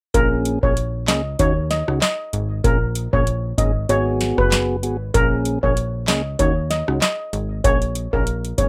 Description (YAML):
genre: dancehall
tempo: 96 BPM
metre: 4/4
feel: swing 56% on 16ths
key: Bb phrygian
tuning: A4 = 440 Hz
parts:
  - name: steel pan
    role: melody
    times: 0.1-8.7 s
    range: Bb4 to Eb5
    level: -25 LUFS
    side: equal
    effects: none
  - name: mellow tonewheel organ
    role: accompaniment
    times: 0.1-8.7 s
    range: Bb3 to Ab4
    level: -26 LUFS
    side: equal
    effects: none
  - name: plucky analog bass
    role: bass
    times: 0.1-8.7 s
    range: Gb1 to Eb2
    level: -25 LUFS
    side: equal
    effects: none
  - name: booming analog drum machine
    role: drums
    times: 0.1-8.7 s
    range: handclaps, hi-hat, kick drum, rim click, snare drum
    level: -23 LUFS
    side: equal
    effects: none
room: little or no reverb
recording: rough home demo mix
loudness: -20 LUFS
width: mono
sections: 0.1-8.7 A section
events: none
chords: 0.1 Bbm7; 1.4 Ebm7; 2.6 Bbm7; 3.9 Abm7; 5.1 Bbm7; 6.4 Ebm7; 7.6 Bbm7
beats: | 0.14 0.77 1.39 2.02 | 2.64 3.27 3.89 4.52 | 5.14 5.77 6.39 7.02 | 7.64 8.27